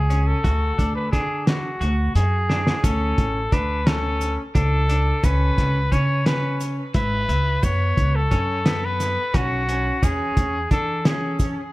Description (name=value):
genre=progressive instrumental, band music in an uneven meter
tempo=175 BPM (eighths)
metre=7/8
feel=straight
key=unclear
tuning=A4 = 441 Hz
part: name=clear trumpet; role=melody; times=0.0-11.5 s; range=F#4 to C#5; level=-25 LUFS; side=left 1 dB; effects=plate reverb, tape echo
part: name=upright bass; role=bass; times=0.0-11.5 s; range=G#1 to E3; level=-22 LUFS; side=equal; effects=none
part: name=clean electric guitar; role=arpeggios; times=0.1-11.6 s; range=B3 to F#4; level=-30 LUFS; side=equal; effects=none
part: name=cloth-damped thuddy drum kit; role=drums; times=0.1-11.6 s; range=hi-hat, kick drum, snare drum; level=-22 LUFS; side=equal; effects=none
part: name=tube shaker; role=percussion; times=2.8-11.7 s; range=none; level=-43 LUFS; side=right 8 dB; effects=none
room=light reverb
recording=none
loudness=-19 LUFS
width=side -19 dB against mid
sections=0.0-2.8 A section; 2.8-11.7 B section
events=drum fill 2.5-2.8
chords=0.4 D; 2.8 D5; 5.2 C#m7; 7.6 F#madd11; 10.0 C#m/E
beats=0.10 | 0.45 0.79 1.13 1.47 1.81 2.16 2.50 | 2.84 3.18 3.52 3.87 4.21 4.55 4.89 | 5.24 5.58 5.92 6.26 6.60 6.95 7.29 | 7.63 7.97 8.31 8.66 9.00 9.34 9.68 | 10.03 10.37 10.71 11.05 11.39